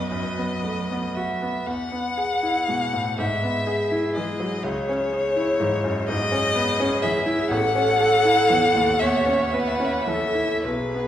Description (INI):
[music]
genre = classical, slow romantic movement for piano quartet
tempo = 32-42 BPM (dotted quarters)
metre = 6/8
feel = rubato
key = unclear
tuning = A4 = 438 Hz
[part]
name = rich violin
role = melody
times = 0.0-11.1 s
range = B4 to F#5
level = -24 LUFS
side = left 2 dB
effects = none
[part]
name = rich cello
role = second line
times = 0.0-10.5 s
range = E3 to G#3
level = -33 LUFS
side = right 4 dB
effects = none
[part]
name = bright concert grand piano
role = accompaniment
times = 0.0-11.1 s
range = A1 to A4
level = -25 LUFS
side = equal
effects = none
[part]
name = warm viola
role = accompaniment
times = 0.0-11.1 s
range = G#4 to C#5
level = -26 LUFS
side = right 2 dB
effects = none
[sound]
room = wet recital hall reverb, RT60 1.3 s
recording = recorded in a church or concert hall, vinyl crackle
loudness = -20 LUFS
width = side -11 dB against mid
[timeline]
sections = 0.0-11.1 A section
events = none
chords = 0.0 B; 1.7 E; 3.2 E/G#; 4.7 C#m; 7.5 F#m7/A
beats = 0.11 | 1.68 3.19 | 4.66 6.09 | 7.52 9.01 | 10.65